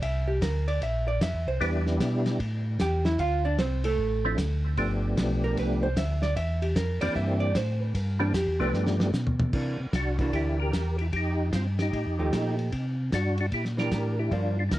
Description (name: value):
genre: soul jazz organ trio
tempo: 151 BPM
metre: 4/4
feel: swing 64% on 8ths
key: unclear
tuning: A4 = 439 Hz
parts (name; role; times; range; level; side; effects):
- vintage hollow-body jazz guitar; accompaniment; 0.0-14.6 s; E3 to G5; -30 LUFS; right 2 dB; none
- mellow tonewheel organ; bass; 0.0-14.8 s; G1 to C3; -28 LUFS; equal; slow rotary speaker
- warm soul drum kit; drums; 0.0-14.8 s; crash cymbal, hi-hat, kick drum, ride cymbal, snare drum, toms; -32 LUFS; equal; none
- percussive tonewheel organ; melody; 1.6-14.8 s; E3 to Bb4; -30 LUFS; equal; slow rotary speaker, chorus vibrato, tape echo
room: light reverb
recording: cassette tape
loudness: -24 LUFS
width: side -15 dB against mid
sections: 0.0-9.5 A section; 9.5-14.8 B section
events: hollow-body jazz guitar solo 0.0-9.5; drum fill 8.7-9.5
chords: 0.0 C9; 1.6 Em7; 2.4 A5; 3.2 Dm7; 4.8 G9; 6.4 C9; 8.7 G7; 9.5 C9; 11.1 F9; 12.7 C9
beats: | 0.02 0.42 0.82 1.21 | 1.61 2.01 2.40 2.80 | 3.19 3.59 3.99 4.38 | 4.78 5.18 5.57 5.97 | 6.37 6.76 7.16 7.56 | 7.95 8.35 8.75 9.14 | 9.54 9.94 10.34 10.73 | 11.13 11.53 11.93 12.32 | 12.72 13.12 13.52 13.91 | 14.31 14.71